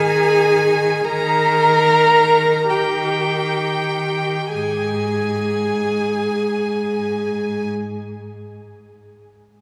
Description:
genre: classical, slow romantic movement for string quartet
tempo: 30-43 BPM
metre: 4/4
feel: rubato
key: unclear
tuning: A4 = 440 Hz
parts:
  - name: rich violin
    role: melody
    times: 0.0-7.7 s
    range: G5 to Bb5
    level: -28 LUFS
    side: equal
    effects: none
  - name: clear violin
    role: second line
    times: 0.0-7.7 s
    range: G5 to Bb5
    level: -26 LUFS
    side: equal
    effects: none
  - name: rich viola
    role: accompaniment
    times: 0.0-7.7 s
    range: G4 to Bb4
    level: -20 LUFS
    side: equal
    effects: none
  - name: rich cello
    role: bass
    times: 0.0-7.7 s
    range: Ab2 to Eb3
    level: -26 LUFS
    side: equal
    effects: none
room: wet cathedral reverb, RT60 4.5 s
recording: recorded in a church or concert hall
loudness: -18 LUFS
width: mono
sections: 0.0-4.5 A section; 4.5-9.6 B section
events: slowing down 0.0-4.5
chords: 0.0 Ab5/Eb; 4.5 N.C.

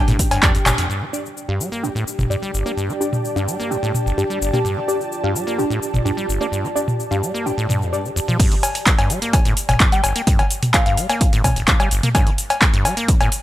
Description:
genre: acid house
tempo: 128 BPM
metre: 4/4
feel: straight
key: unclear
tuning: A4 = 440 Hz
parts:
  - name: dark analog pad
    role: sustained chords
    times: 0.0-8.4 s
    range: D4 to G5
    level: -32 LUFS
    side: right 1 dB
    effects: chorus, sidechain pumping
  - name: acid bass, saw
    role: riff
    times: 0.0-13.3 s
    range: G1 to Bb3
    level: -23 LUFS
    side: equal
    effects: tube saturation, tape echo
  - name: band-passed chord stab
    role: stabs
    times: 0.0-8.0 s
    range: D4 to G5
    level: -26 LUFS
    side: equal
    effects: phaser, tape echo
  - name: booming analog drum machine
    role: drums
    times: 0.1-13.4 s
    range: cowbell, crash cymbal, handclaps, hi-hat, shaker, toms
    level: -20 LUFS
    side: equal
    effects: none
  - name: electronic kick drum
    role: drums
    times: 0.2-0.5, 8.4-13.2 s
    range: none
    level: -17 LUFS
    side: equal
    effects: none
  - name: ethereal airy pad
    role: texture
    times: 1.3-8.4 s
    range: G4 to A5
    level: -27 LUFS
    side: right 2 dB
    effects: ensemble chorus, built-in reverb, sidechain pumping
  - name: soft synth bell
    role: melody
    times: 9.9-10.9 s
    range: F5 to G5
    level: -26 LUFS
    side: left 1 dB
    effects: chorus, tape echo
room: light reverb, digital ambience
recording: dry, gritty hardware recording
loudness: -16 LUFS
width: side -14 dB against mid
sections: 0.9-8.4 A section; 8.4-13.4 B section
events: drum fill 0.7; band accent 0.7; filter sweep on analog synth pad 0.9-8.4; drop 8.4-13.4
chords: 0.0 G5

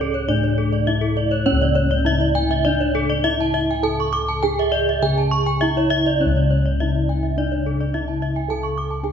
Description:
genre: Balinese gamelan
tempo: 102 BPM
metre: 4/4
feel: uneven beats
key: C# pelog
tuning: A4 = 439 Hz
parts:
  - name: gamelan-type bronze metallophone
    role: melody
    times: 0.0-9.1 s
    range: C#4 to A4-20c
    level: -24 LUFS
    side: right 1 dB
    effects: none
  - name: gamelan-type bronze metallophone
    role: arpeggios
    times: 0.0-8.8 s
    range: A4-20c to C#6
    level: -27 LUFS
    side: right 6 dB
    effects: none
  - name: gamelan-type bossed gongs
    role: bass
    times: 0.0-9.1 s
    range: C#2 to A4-20c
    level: -21 LUFS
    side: left 2 dB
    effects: none
  - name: gamelan-type bronze metallophone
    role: arpeggios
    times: 0.1-9.1 s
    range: A4-20c to D6+20c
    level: -24 LUFS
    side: left 2 dB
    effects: none
room: wet recital hall reverb, RT60 1.7 s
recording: recorded in a church or concert hall, nothing above 7.7 kHz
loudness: -17 LUFS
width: side -8 dB against mid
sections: 0.0-1.5 A section; 1.5-9.1 B section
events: none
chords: none

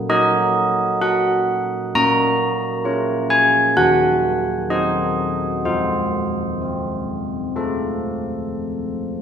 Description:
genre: classical, tune for church bells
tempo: 64 BPM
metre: 4/4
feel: straight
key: unclear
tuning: A4 = 440 Hz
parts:
  - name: carillon bells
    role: solo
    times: 0.0-9.2 s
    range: Eb3 to Bb5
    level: -17 LUFS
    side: equal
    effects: none
room: wet concert hall reverb, RT60 2.0 s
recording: heard from further back in the room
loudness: -17 LUFS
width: side -8 dB against mid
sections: 0.0-9.2 A section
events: none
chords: 0.0 Ebm/Bb; 1.9 Bbm; 3.8 Cdim/Eb; 5.6 F

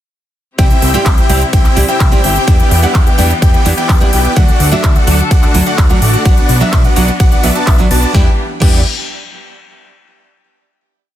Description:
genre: EDM, festival progressive house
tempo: 127 BPM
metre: 4/4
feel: straight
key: E minor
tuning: A4 = 440 Hz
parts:
  - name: picked steel-string acoustic guitar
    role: accompaniment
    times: 0.6-8.8 s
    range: F#3 to G4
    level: -19 LUFS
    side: right 3 dB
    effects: vintage 12-bit sampler grit, sidechain pumping, digital delay
  - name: warm studio string section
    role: sustained chords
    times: 0.6-8.4 s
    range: C3 to A4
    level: -22 LUFS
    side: left 2 dB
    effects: sidechain pumping
  - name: warm concert grand piano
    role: arpeggios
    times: 0.6-8.8 s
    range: E5 to A5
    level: -21 LUFS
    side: left 3 dB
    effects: sidechain pumping, digital delay
  - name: big supersaw lead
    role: riff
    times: 0.6-8.8 s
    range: A3 to A5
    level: -17 LUFS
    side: equal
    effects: sidechain pumping, digital delay
  - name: fat analog bass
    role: bass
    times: 0.6-8.8 s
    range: G1 to E2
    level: -14 LUFS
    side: equal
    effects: sidechain pumping
  - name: big-room dance drum kit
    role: drums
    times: 0.6-8.7 s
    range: crash cymbal, handclaps, hi-hat, ride cymbal, snare drum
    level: -20 LUFS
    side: equal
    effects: overdrive, studio reverb
  - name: electronic kick drum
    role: drums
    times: 0.6-8.7 s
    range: none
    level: -10 LUFS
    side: equal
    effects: overdrive, studio reverb
room: studio reverb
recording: dense, heavily limited modern master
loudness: -8 LUFS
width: side -12 dB against mid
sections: 0.6-8.1 drop; 8.1-10.0 final chord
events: drop 0.6-8.1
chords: 0.6 C; 2.5 Em7; 4.4 D; 6.3 Bm; 8.1 Em7

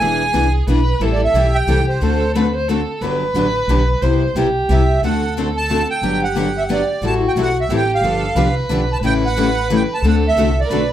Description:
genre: acoustic string swing (jazz manouche)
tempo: 180 BPM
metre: 3/4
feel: swing 60% on 8ths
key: G major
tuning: A4 = 440 Hz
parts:
  - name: accordion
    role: melody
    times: 0.0-2.3, 4.7-10.9 s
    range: C5 to A5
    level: -20 LUFS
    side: right 3 dB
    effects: light tremolo tuning
  - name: warm violin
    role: second line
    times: 0.0-10.9 s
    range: F#4 to C5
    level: -22 LUFS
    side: right 1 dB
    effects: none
  - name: picked steel-string acoustic guitar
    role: accompaniment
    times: 0.0-10.8 s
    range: C3 to A4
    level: -22 LUFS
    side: left 5 dB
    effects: none
  - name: picked steel-string acoustic guitar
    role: accompaniment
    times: 0.0-10.8 s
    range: C3 to B4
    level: -24 LUFS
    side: right 1 dB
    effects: none
  - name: upright bass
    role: bass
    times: 0.0-10.9 s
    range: E1 to D2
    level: -19 LUFS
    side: equal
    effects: none
room: wet club reverb, RT60 0.5 s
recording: heard from further back in the room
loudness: -14 LUFS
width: side -11 dB against mid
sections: 0.0-7.0 A section; 7.0-10.9 B section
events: none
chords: 0.0 E7; 1.0 Am9; 2.0 D7; 3.0 Gmaj7; 4.0 Cmaj7; 5.0 D7; 6.0 Gmaj7; 7.0 Am7; 8.0 G7; 9.0 A7; 10.0 D7

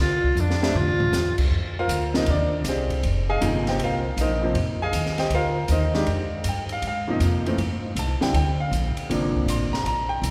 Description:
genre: modal jazz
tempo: 158 BPM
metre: 4/4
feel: swing 66% on 8ths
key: F dorian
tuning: A4 = 442 Hz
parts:
  - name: clear tenor saxophone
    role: melody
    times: 0.0-1.4 s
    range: D4 to F4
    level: -28 LUFS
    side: equal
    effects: none
  - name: upright bass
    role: bass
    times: 0.0-10.3 s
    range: F1 to Ab2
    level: -27 LUFS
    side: equal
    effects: none
  - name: open jazz drum kit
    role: drums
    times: 0.2-10.3 s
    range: crash cymbal, hi-hat, kick drum, ride cymbal, snare drum, toms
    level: -32 LUFS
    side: equal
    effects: none
  - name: clear baby grand piano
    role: accompaniment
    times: 0.6-10.2 s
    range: Bb2 to C6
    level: -28 LUFS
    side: equal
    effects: none
room: wet church reverb, RT60 3.0 s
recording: recorded in a church or concert hall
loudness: -23 LUFS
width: mono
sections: 0.0-1.5 A section; 1.5-10.3 A section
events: tenor saxophone solo 0.0-1.5; drum fill 0.4-1.1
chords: 0.0 G7(no3) (rootless); 1.5 Fm11; 7.6 Gm11

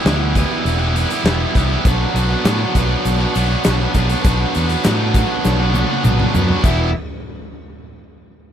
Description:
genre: classic rock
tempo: 100 BPM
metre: 4/4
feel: straight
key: E minor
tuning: A4 = 437 Hz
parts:
  - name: cranked stack guitar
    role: riff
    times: 0.0-6.9 s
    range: E2 to B4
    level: -22 LUFS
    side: left 12 dB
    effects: overdrive
  - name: overdriven electric guitar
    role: riff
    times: 0.0-6.9 s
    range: E2 to F#4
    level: -21 LUFS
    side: right 15 dB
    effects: none
  - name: fingered electric bass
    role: bass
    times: 0.1-6.9 s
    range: E1 to A2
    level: -18 LUFS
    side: equal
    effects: none
  - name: huge arena drum kit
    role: drums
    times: 0.1-6.8 s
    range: crash cymbal, hi-hat, kick drum, snare drum, toms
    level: -20 LUFS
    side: equal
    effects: none
  - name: tube shaker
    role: percussion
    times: 1.9-6.9 s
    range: none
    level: -36 LUFS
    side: left 17 dB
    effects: none
  - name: octave-fuzz lead guitar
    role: second line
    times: 6.6-6.9 s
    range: E4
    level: -24 LUFS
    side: left 4 dB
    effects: distortion
room: little or no reverb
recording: none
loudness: -14 LUFS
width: side -9 dB against mid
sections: 0.0-6.6 A section; 6.6-8.5 B section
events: drum fill 5.4-6.6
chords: 0.0 Em; 1.9 Bm; 6.6 Em

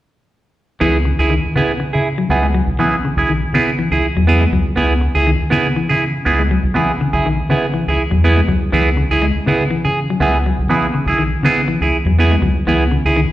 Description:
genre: afrobeat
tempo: 121 BPM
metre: 4/4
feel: swing 54% on 16ths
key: C# minor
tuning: A4 = 440 Hz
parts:
  - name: semi-hollow electric guitar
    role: arpeggios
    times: 0.8-13.3 s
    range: B2 to G#3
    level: -21 LUFS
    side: left 4 dB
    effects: slapback echo
  - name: clean electric guitar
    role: stabs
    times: 0.8-13.2 s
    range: B3 to G#4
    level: -17 LUFS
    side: right 3 dB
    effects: phaser, slapback echo
  - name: deep dub fingered electric bass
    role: bass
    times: 0.8-13.3 s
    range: B1 to C#3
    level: -17 LUFS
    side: equal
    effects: none
room: light reverb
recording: live gig heard through the venue's PA, recital hall reverb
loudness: -13 LUFS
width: side -14 dB against mid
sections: 0.8-13.3 A section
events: none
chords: 0.8 C#m7

